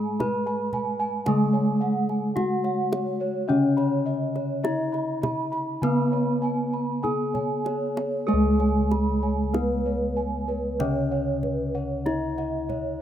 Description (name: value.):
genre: Javanese gamelan.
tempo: 48-57 BPM.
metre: 4/4.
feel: straight.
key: C# slendro.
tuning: A4 = 442 Hz.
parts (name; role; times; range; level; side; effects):
gamelan-type bronze metallophone; melody; 0.0-13.0 s; B3-40c to B4-40c; -29 LUFS; left 4 dB; none.
gamelan-type bronze metallophone; accompaniment; 0.0-13.0 s; C#3 to B3-40c; -27 LUFS; right 1 dB; none.
gamelan-type bronze metallophone; arpeggios; 0.0-13.0 s; B4-40c to B5-40c; -30 LUFS; right 5 dB; none.
gamelan-type bossed gongs; bass; 0.0-13.0 s; C#2 to G#4+20c; -30 LUFS; left 1 dB; none.
gamelan-type bossed gongs; arpeggios; 0.2-13.0 s; B4-40c to B5-40c; -36 LUFS; left 5 dB; none.
kendang; percussion; 0.2-13.0 s; none; -33 LUFS; right 2 dB; none.
room: light reverb.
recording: rough home demo mix.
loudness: -23 LUFS.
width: side -10 dB against mid.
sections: 0.0-8.3 A section; 8.3-13.0 B section.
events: drum fill 7.0-8.3.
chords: none.